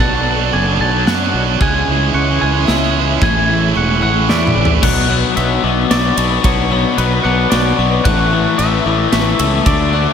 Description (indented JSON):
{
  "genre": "post-rock",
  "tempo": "112 BPM",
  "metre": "3/4",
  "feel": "straight",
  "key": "B dorian",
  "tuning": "A4 = 441 Hz",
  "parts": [
    { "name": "twangy electric guitar", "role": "melody", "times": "0.0-10.1 s", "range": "B4 to A5", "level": "-19 LUFS", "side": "equal", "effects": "spring reverb, analog delay" },
    { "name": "dark symphonic string section", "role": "sustained chords", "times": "0.0-10.1 s", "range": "G#3 to E5", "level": "-26 LUFS", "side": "left 1 dB", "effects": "none" },
    { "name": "electric guitar through a small old amp", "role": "arpeggios", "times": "0.0-5.3 s", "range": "A2 to F#4", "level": "-24 LUFS", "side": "left 3 dB", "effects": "analog delay" },
    { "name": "glockenspiel with hard plastic mallets", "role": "arpeggios", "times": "0.0-10.1 s", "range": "C#6 to F#6", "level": "-26 LUFS", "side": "right 5 dB", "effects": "analog delay" },
    { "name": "cranked stack guitar", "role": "riff", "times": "0.0-4.8 s", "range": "A2 to G#3", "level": "-19 LUFS", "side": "right 10 dB", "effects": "overdrive" },
    { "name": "fuzz fingered electric bass", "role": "bass", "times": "0.0-10.1 s", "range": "E1 to F#2", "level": "-18 LUFS", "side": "equal", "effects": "overdrive" },
    { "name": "big rock drum kit", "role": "drums", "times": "1.1-9.8 s", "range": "crash cymbal, kick drum, ride cymbal, snare drum, toms", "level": "-19 LUFS", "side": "equal", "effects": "none" },
    { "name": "crunchy overdriven guitar", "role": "riff", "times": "4.8-10.1 s", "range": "A2 to D4", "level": "-16 LUFS", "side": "left 10 dB", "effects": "none" }
  ],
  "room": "moderate lush hall reverb, RT60 2.8 s",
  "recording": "dreamy mix soaked in reverb",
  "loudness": "-12 LUFS",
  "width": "side -7 dB against mid",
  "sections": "0.0-4.8 A section; 4.8-10.1 B section",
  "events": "build-up 0.0-4.8; drum fill 4.3-4.8",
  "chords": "0.0 Bm7; 1.6 C#m; 3.2 Amaj7; 4.8 Bmadd9; 8.1 A"
}